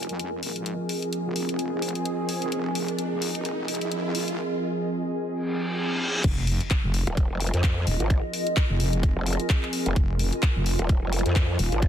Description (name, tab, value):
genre	bass house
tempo	129 BPM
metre	4/4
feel	swing 57% on 16ths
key	F minor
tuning	A4 = 440 Hz
part	sweeping resonant pad	sustained chords	0.0-11.9 s	F3 to Ab4	-30 LUFS	right 1 dB	chorus, sidechain pumping
part	wobble bass	bass	0.0-11.7 s	Eb1 to F2	-28 LUFS	equal	chorus, overdrive, sidechain pumping, high-pass filter
part	garage drum kit	drums	0.0-11.9 s	crash cymbal, handclaps, hi-hat	-31 LUFS	left 3 dB	none
part	riser, reverse cymbal and impact	sound effects	0.1-8.1 s	none	-34 LUFS	equal	none
part	granular cloud pad	texture	0.0-11.9 s	F4 to Ab5	-32 LUFS	equal	built-in reverb, sidechain pumping
part	electronic kick drum	drums	6.2-11.9 s	none	-22 LUFS	equal	none
part	growl bass	bass	7.1-11.9 s	Eb1 to F2	-25 LUFS	equal	chorus, tube saturation, sidechain pumping
room	digital ambience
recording	dense, heavily limited modern master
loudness	-23 LUFS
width	side -9 dB against mid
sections	0.0-6.2 A section; 6.2-11.9 B section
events	build-up 0.0-6.2; filter sweep on analog synth pad 0.0-6.2; riser 0.1-4.4; reverse cymbal 5.5-6.2; drop 6.2-11.9; impact 6.2-8.1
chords	0.0 Fm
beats	0.20 | 0.66 1.13 1.59 2.06 | 2.52 2.99 3.45 3.92 | 4.38 4.85 5.31 5.78 | 6.24 6.71 7.17 7.64 | 8.10 8.57 9.03 9.50 | 9.96 10.43 10.89 11.36 | 11.82